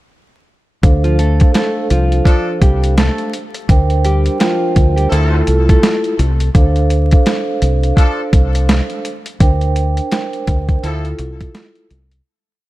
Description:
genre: hip hop, boom-bap hip-hop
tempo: 84 BPM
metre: 4/4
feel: swing 60% on 16ths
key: D minor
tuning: A4 = 439 Hz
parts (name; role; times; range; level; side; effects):
- vibraphone with soft mallets; accompaniment; 0.8-11.9 s; D4 to G5; -20 LUFS; right 2 dB; cassette tape, high-pass filter, low-pass filter
- deep dub fingered electric bass; bass; 0.8-12.2 s; C2 to D2; -14 LUFS; equal; none
- boom bap sampler-style drum kit; drums; 0.8-12.2 s; hi-hat, kick drum, snare drum; -13 LUFS; equal; none
- mellow electric guitar; melody; 1.0-6.0 s; F3 to A4; -21 LUFS; left 1 dB; high-pass filter, low-pass filter, ping-pong delay
- clear horn section; stabs; 2.3-11.1 s; F3 to A4; -26 LUFS; left 2 dB; high-pass filter, low-pass filter, ping-pong delay
room: little or no reverb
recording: vinyl crackle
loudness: -12 LUFS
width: side -17 dB against mid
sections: 0.8-12.3 hook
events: fade-out 9.4-12.3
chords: 0.8 Dm7; 3.7 Bb6/D; 5.1 Fmaj7; 6.5 Dm7; 9.4 Bb6/D; 10.8 Fmaj7

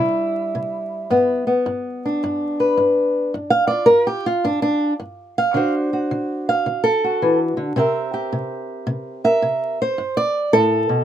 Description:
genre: acoustic country blues, solo or duo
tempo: 108 BPM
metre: 4/4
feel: swing 66% on 8ths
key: unclear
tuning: A4 = 441 Hz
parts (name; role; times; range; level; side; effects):
- fingerpicked old ladder-braced acoustic guitar; solo; 0.0-11.0 s; G2 to F5; -17 LUFS; equal; none
room: light reverb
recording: close, detailed microphones, vinyl crackle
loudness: -17 LUFS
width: side -10 dB against mid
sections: 0.0-11.0 A section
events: steel-string acoustic guitar solo 0.0-11.0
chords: 0.0 C; 1.1 G7; 5.5 D7; 7.8 C7; 10.0 G

